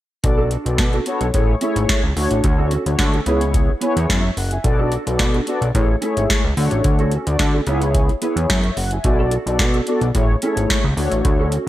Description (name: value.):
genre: early-eighties boogie funk.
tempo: 109 BPM.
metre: 4/4.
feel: straight.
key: B dorian.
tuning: A4 = 440 Hz.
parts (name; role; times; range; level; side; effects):
mellow synth brass; accompaniment; 0.2-11.7 s; A3 to G#5; -22 LUFS; left 2 dB; chorus.
mellow electric guitar; riff; 0.2-11.7 s; B3 to B4; -27 LUFS; right 4 dB; ensemble chorus.
fat analog bass; bass; 0.2-11.6 s; F#1 to D3; -20 LUFS; equal; none.
booming analog drum machine; drums; 0.2-11.7 s; hi-hat, kick drum, snare drum; -19 LUFS; equal; gated reverb.
room: little or no reverb.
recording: none.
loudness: -16 LUFS.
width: side -14 dB against mid.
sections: 0.2-11.7 A section.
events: none.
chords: 0.2 Bm7; 1.3 Amaj7; 2.2 Dmaj7; 3.3 C#m7; 4.6 Bm7; 5.7 Amaj7; 6.6 Dmaj7; 7.7 C#m7; 9.0 Bm7; 10.1 Amaj7; 11.0 Dmaj7.